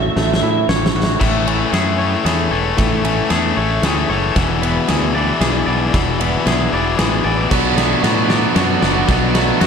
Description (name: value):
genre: post-rock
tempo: 114 BPM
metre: 3/4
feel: straight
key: A major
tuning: A4 = 440 Hz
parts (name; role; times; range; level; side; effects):
- twelve-string electric guitar; melody; 0.0-0.7 s; E5; -24 LUFS; right 5 dB; analog chorus, slapback echo, analog delay
- rich studio string section; sustained chords; 0.0-9.7 s; E3 to B5; -30 LUFS; right 5 dB; none
- twangy electric guitar; arpeggios; 0.0-9.7 s; B2 to D5; -22 LUFS; equal; slapback echo, analog delay
- growling fingered electric bass; bass; 0.0-9.7 s; E1 to A2; -21 LUFS; right 1 dB; overdrive
- big rock drum kit; drums; 0.2-9.7 s; crash cymbal, kick drum, ride cymbal, snare drum; -19 LUFS; equal; none
- tight distorted guitar; riff; 1.2-9.7 s; E2 to B3; -19 LUFS; left 6 dB; distortion, slapback echo
- biting overdriven guitar; riff; 7.5-9.7 s; B2 to F#4; -19 LUFS; right 12 dB; slapback echo
room: moderate lush hall reverb, RT60 2.0 s, small room ambience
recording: big arena sound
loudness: -14 LUFS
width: side -6 dB against mid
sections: 0.0-1.2 A section; 1.2-9.7 B section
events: drum fill 0.0-1.2, 1.2-9.7; build-up 1.2-9.7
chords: 0.0 F#m7/A; 1.2 Amaj7; 4.4 E7; 7.5 Bm7